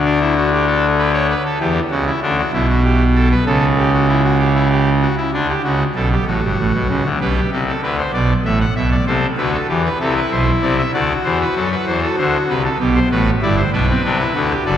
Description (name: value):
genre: classical, baroque-style 3-part fugue for pipe organ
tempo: 64 BPM (dotted quarters)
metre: 12/8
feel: straight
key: G major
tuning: A4 = 440 Hz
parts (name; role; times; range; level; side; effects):
- pipe organ, trumpet; solo; 0.0-14.8 s; F#1 to F#5; -14 LUFS; equal; none
room: wet church reverb, RT60 2.9 s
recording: dark, warm production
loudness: -14 LUFS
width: side -10 dB against mid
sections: 0.0-7.2 A section; 7.2-14.8 B section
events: none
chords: 0.0 D5; 1.6 Em7; 3.5 A7/C# (rootless); 5.3 D; 7.2 G/B; 9.1 Am/C; 10.9 D7; 12.8 G